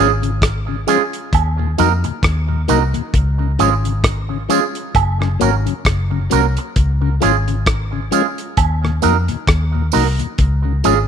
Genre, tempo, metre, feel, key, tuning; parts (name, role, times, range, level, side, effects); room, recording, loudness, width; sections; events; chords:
roots reggae; 66 BPM; 4/4; swing 57% on 16ths; Db major; A4 = 440 Hz
electric guitar with an envelope filter; accompaniment; 0.0-11.0 s; Ab3 to Bb4; -20 LUFS; right 13 dB; tape echo
mellow tonewheel organ; accompaniment; 0.0-10.9 s; Eb2 to Eb4; -22 LUFS; left 12 dB; slow rotary speaker
vintage muted fingered electric bass; bass; 0.0-11.1 s; Gb1 to F2; -17 LUFS; left 1 dB
damped 70s drum kit; drums; 0.2-11.1 s; hi-hat, kick drum, rim click; -18 LUFS; equal
tambourine and woodblock; percussion; 0.9-11.1 s; -23 LUFS; right 11 dB
light reverb, small room ambience; 1960s-style stereo with parts hard left and right; -14 LUFS; side -8 dB against mid
0.0-11.1 A section
0.0 Db; 1.3 Ebm; 3.1 Db; 5.0 Gb; 6.8 Db; 8.6 Ebm; 10.4 Db